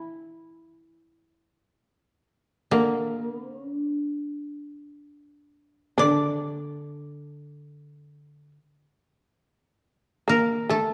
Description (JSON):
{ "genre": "japanese traditional, Japanese chamber music", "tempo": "free time", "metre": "none", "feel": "none", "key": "unclear", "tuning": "A4 = 439 Hz", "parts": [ { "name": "koto", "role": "melody", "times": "0.0-10.9 s", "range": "D4 to D5", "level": "-28 LUFS", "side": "equal", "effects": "none" }, { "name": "shamisen", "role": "second line", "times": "0.0-10.9 s", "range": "D3 to D4", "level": "-30 LUFS", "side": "equal", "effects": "none" }, { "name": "koto", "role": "accompaniment", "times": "6.0-8.6 s", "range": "D3", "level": "-31 LUFS", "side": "equal", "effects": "none" } ], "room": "moderate scoring stage reverb, RT60 1.5 s", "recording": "dark, warm production", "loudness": "-26 LUFS", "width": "mono", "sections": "0.0-9.4 A section; 9.4-10.9 B section", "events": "none", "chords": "none" }